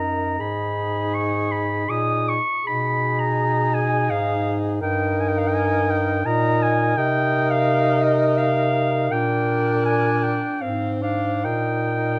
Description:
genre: classical, lyrical piece for single-reed quartet.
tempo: 69-86 BPM.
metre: 3/4.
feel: rubato.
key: Eb major from 4.8 s.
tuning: A4 = 438 Hz.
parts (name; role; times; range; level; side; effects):
warm clarinet; melody; 0.0-12.2 s; Eb5 to Eb6; -26 LUFS; equal; none.
warm alto saxophone; second line; 0.0-12.2 s; Ab4 to C5; -29 LUFS; equal; none.
mellow tenor saxophone; accompaniment; 0.0-12.2 s; C4 to Eb4; -28 LUFS; equal; none.
warm bass clarinet; bass; 0.0-12.2 s; Gb2 to C3; -27 LUFS; equal; none.
room: light reverb.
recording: close, detailed microphones.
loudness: -21 LUFS.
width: mono.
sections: 0.0-12.2 A section.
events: none.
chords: 0.4 Abm; 2.6 Abm/Cb; 4.8 Eb/G; 7.0 Cm7; 9.1 Gm/Bb; 10.6 Fm/Ab; 11.5 Eb/Bb.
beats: | 0.40 1.14 1.89 | 2.65 3.37 4.10 | 4.82 5.54 6.26 | 6.98 7.69 8.38 | 9.11 9.86 10.63 | 11.46.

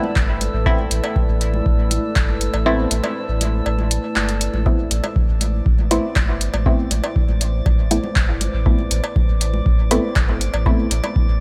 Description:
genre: dub techno.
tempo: 120 BPM.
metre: 4/4.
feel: straight.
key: A minor.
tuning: A4 = 440 Hz.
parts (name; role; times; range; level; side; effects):
deep dark ambient pad; sustained chords; 0.0-11.4 s; A3 to D5; -31 LUFS; equal; chorus, built-in reverb, sidechain pumping.
filtered dub chord stab; stabs; 0.0-10.9 s; A3 to E4; -26 LUFS; equal; chorus, phaser, cassette tape, sidechain pumping, dub echo.
congas and cowbell; percussion; 0.0-11.1 s; none; -32 LUFS; equal; sidechain pumping on perc, dub echo.
drifting glass-harmonics texture; texture; 0.0-11.4 s; A4 to D5; -35 LUFS; equal; chorus, built-in reverb, sidechain pumping.
warm sub bass; bass; 0.2-11.4 s; G1 to A1; -24 LUFS; equal; sidechain pumping.
booming analog drum machine; drums; 0.2-11.0 s; handclaps, hi-hat; -26 LUFS; equal; dub echo.
electronic kick drum; drums; 0.2-11.3 s; none; -21 LUFS; equal; none.
room: digital ambience.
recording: none.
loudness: -19 LUFS.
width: mono.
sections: 0.0-11.4 A section.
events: kick drops out 2.7-4.7.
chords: 0.0 Amadd9.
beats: 0.16 | 0.66 1.16 1.66 2.16 | 2.66 3.16 3.66 4.16 | 4.66 5.16 5.66 6.16 | 6.66 7.16 7.66 8.16 | 8.66 9.16 9.66 10.16 | 10.66 11.16.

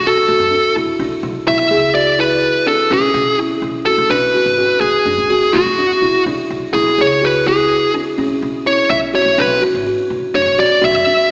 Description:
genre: progressive instrumental, band music in an uneven meter.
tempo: 250 BPM (eighths).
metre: 11/8.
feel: straight.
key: B dorian.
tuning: A4 = 440 Hz.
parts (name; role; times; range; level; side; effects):
fuzz lead guitar; melody; 0.0-11.3 s; F#4 to E5; -16 LUFS; equal; distortion.
buzzing kalimba; arpeggios; 0.0-11.3 s; C#4 to G#4; -20 LUFS; equal; none.
upright bass; bass; 0.0-11.1 s; G#1 to B2; -30 LUFS; equal; none.
room: moderate concert hall reverb, RT60 2.4 s.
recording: recorded in a church or concert hall, small speaker sound.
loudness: -15 LUFS.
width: mono.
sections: 0.0-11.3 A section.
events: lead electric guitar solo 0.0-11.3.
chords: 0.3 D/B; 1.5 E/B; 2.9 B13sus4; 4.1 Bm; 5.6 D/B; 6.8 E/B; 8.2 Bsus24; 9.4 Bm.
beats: 0.03 0.27 0.51 0.75 0.99 1.23 | 1.47 1.71 1.95 2.19 2.43 2.67 2.91 3.15 3.39 3.63 3.87 | 4.11 4.35 4.59 4.83 5.07 5.31 5.55 5.79 6.03 6.27 6.51 | 6.75 6.99 7.23 7.47 7.71 7.95 8.19 8.43 8.67 8.91 9.15 | 9.39 9.63 9.87 10.11 10.35 10.59 10.82 11.06 11.30.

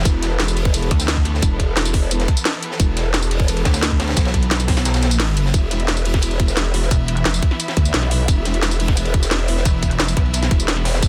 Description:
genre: dark technical drum and bass.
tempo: 175 BPM.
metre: 4/4.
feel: straight.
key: unclear.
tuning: A4 = 443 Hz.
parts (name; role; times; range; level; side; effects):
bright studio string section; sustained chords; 0.0-11.1 s; E3 to E5; -32 LUFS; equal; sidechain pumping.
pulsing pluck wobble bass; bass; 0.0-1.4, 3.7-7.4, 9.7-10.5 s; E1 to D2; -21 LUFS; equal; chorus.
crunchy breakbeat drum kit; drums; 0.0-11.1 s; hi-hat, ride cymbal, snare drum; -31 LUFS; equal; high-pass filter on cymbals, high-pass filter on hats, high-pass filter on snare, high-pass filter on room.
growl bass; bass; 0.1-11.1 s; E1 to D2; -22 LUFS; equal; chorus, overdrive, sidechain pumping.
drum and bass drum kit; drums; 0.1-11.1 s; hi-hat, snare drum, tambourine; -24 LUFS; equal; none.
electronic kick drum; drums; 0.1-11.1 s; none; -20 LUFS; equal; none.
room: studio reverb.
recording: dense, heavily limited modern master.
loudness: -18 LUFS.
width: mono.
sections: 0.0-5.5 A section; 5.5-11.1 A section.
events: drop 0.0-5.5, 5.5-11.1; kick drops out 4.9-5.5.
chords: 0.0 E5.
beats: | 0.05 0.40 0.74 1.08 | 1.43 1.77 2.11 2.45 | 2.80 3.14 3.48 3.83 | 4.17 4.51 4.85 5.20 | 5.54 5.88 6.22 6.57 | 6.91 7.25 7.60 7.94 | 8.28 8.62 8.97 9.31 | 9.65 10.00 10.34 10.68 | 11.03.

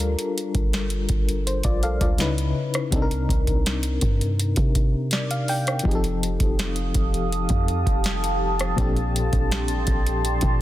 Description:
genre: contemporary R&B.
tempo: 82 BPM.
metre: 4/4.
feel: straight.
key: unclear.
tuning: A4 = 440 Hz.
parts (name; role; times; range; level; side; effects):
FM electric piano with tremolo; accompaniment; 0.0-10.6 s; Bb2 to G5; -26 LUFS; left 3 dB; none.
warm 808-style bass; bass; 0.0-10.6 s; F1 to C3; -26 LUFS; equal; none.
booming analog drum machine; drums; 0.0-10.6 s; hi-hat, kick drum, rim click, snare drum; -24 LUFS; equal; none.
deep dark ambient pad; sustained chords; 6.7-10.6 s; G4 to Eb6; -27 LUFS; right 2 dB; chorus, built-in reverb.
room: little or no reverb.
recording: dense, heavily limited modern master.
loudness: -20 LUFS.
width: side -14 dB against mid.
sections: 0.0-10.6 A section.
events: FM electric piano fill 4.8-5.9.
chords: 0.0 Gm9; 2.2 C#m9; 2.9 Cm9; 5.9 F9; 8.8 Bbmaj13.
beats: | 0.00 0.73 1.46 2.19 | 2.92 3.66 4.39 5.12 | 5.85 6.58 7.32 8.05 | 8.78 9.51 10.24.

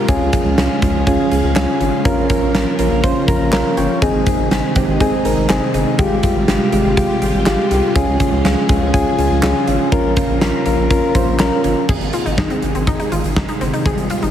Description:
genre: synth-pop.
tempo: 122 BPM.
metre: 4/4.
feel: straight.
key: Ab major.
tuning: A4 = 439 Hz.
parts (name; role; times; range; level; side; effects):
soft electric-piano-like synth keys; accompaniment; 0.0-11.9 s; Ab3 to Bb5; -17 LUFS; left 1 dB; chorus.
string machine, full ensemble; sustained chords; 0.0-14.3 s; C3 to Bb4; -21 LUFS; right 1 dB; ensemble chorus.
round analog bass; bass; 0.1-14.3 s; G1 to Db2; -21 LUFS; equal; none.
huge arena drum kit; drums; 0.1-14.3 s; crash cymbal, handclaps, hi-hat, kick drum, snare drum; -19 LUFS; equal; none.
analog pluck; arpeggios; 11.9-14.3 s; C4 to Ab4; -23 LUFS; left 2 dB; chorus, slapback echo.
room: moderate lush hall reverb, RT60 2.2 s.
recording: heavily compressed radio sound.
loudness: -13 LUFS.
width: side -10 dB against mid.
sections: 0.0-11.9 A section; 11.9-14.3 B section.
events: synth keys fill 3.0-4.0.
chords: 0.1 Db; 2.1 Bbm; 4.0 Ab; 6.0 Fmadd9/Ab; 8.0 Db; 9.9 Bbm; 11.9 Ab.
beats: | 0.09 0.58 1.07 1.56 | 2.05 2.54 3.04 3.53 | 4.02 4.51 5.00 5.50 | 5.99 6.48 6.97 7.46 | 7.95 8.45 8.94 9.43 | 9.92 10.41 10.90 11.40 | 11.89 12.38 12.87 13.36 | 13.86.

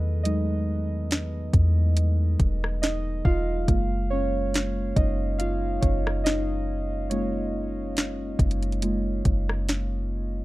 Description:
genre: contemporary R&B.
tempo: 70 BPM.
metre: 4/4.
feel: swing 54% on 16ths.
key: unclear.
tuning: A4 = 438 Hz.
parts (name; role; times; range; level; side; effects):
muted felt-like synth keys; accompaniment; 0.0-10.4 s; F#3 to F5; -28 LUFS; right 1 dB; chorus.
soft 808-style bass; bass; 0.0-10.4 s; E1 to E2; -26 LUFS; equal; none.
smooth R&B drum kit; drums; 0.3-9.9 s; hi-hat, kick drum, rim click, snare drum; -23 LUFS; equal; none.
room: little or no reverb.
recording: dark, warm production, faint mains hum.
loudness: -23 LUFS.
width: side -18 dB against mid.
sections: 0.0-10.4 A section.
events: synth keys solo 0.0-10.4.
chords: 0.0 Emaj9; 3.7 F#maj9.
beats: | 0.25 1.11 1.97 2.82 | 3.68 4.54 5.39 6.25 | 7.11 7.97 8.82 9.68.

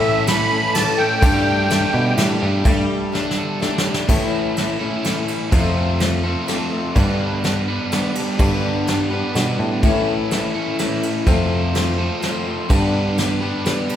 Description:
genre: folk rock and heartland rock.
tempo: 126 BPM.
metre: 3/4.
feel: straight.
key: G lydian, G mixolydian from 4.1 s.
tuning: A4 = 440 Hz.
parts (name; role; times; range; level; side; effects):
musette accordion; melody; 0.0-2.1 s; E5 to B5; -20 LUFS; right 2 dB; none.
picked old ladder-braced acoustic guitar; accompaniment; 0.0-14.0 s; F2 to A4; -23 LUFS; left 5 dB; none.
crunchy overdriven guitar; riff; 0.0-14.0 s; A2 to B4; -23 LUFS; right 2 dB; none.
picked electric bass; bass; 0.0-13.5 s; F2 to B2; -23 LUFS; equal; none.
soft brush drum kit; drums; 0.3-14.0 s; crash cymbal, kick drum, ride cymbal, snare drum; -22 LUFS; right 1 dB; none.
room: wet recital hall reverb, RT60 1.5 s.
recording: recorded in a church or concert hall.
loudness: -17 LUFS.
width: side -10 dB against mid.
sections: 0.0-2.7 A section; 2.7-4.1 B section; 4.1-14.0 C section.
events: drum fill 3.1-4.1.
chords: 0.0 A; 1.2 Gsus2; 4.1 A; 5.5 F; 7.0 G; 9.8 A; 11.3 F; 12.7 G.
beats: 0.28 0.75 | 1.23 1.70 2.18 | 2.65 3.13 3.61 | 4.09 4.57 5.04 | 5.52 6.00 6.48 | 6.96 7.44 7.92 | 8.39 8.87 9.35 | 9.83 10.31 10.78 | 11.26 11.74 12.22 | 12.70 13.17 13.65.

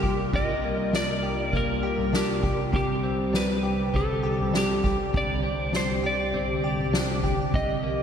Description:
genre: dream pop.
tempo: 100 BPM.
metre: 4/4.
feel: straight.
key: unclear.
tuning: A4 = 439 Hz.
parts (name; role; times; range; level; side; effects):
electric slide guitar; melody; 0.0-8.0 s; G4 to Eb5; -29 LUFS; equal; shimmer reverb, ping-pong delay.
hollow soft pad; sustained chords; 0.0-8.0 s; C2 to Bb4; -28 LUFS; equal; ensemble chorus, shimmer reverb.
direct-recorded clean electric guitar; arpeggios; 0.0-8.0 s; C3 to G4; -31 LUFS; left 1 dB; lush chorus, shimmer reverb, ping-pong delay.
soft-mallet drum kit; drums; 0.0-7.7 s; kick drum, snare drum, toms; -29 LUFS; equal; gated reverb.
room: wet lush hall reverb, RT60 2.4 s.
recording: bright 1980s-style digital production.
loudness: -23 LUFS.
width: side -8 dB against mid.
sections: 0.0-8.0 A section.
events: none.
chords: 0.0 Ebmaj7/C; 2.7 Csus2.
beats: | 0.34 0.94 1.54 2.14 | 2.74 3.34 3.94 4.54 | 5.14 5.74 6.34 6.94 | 7.54.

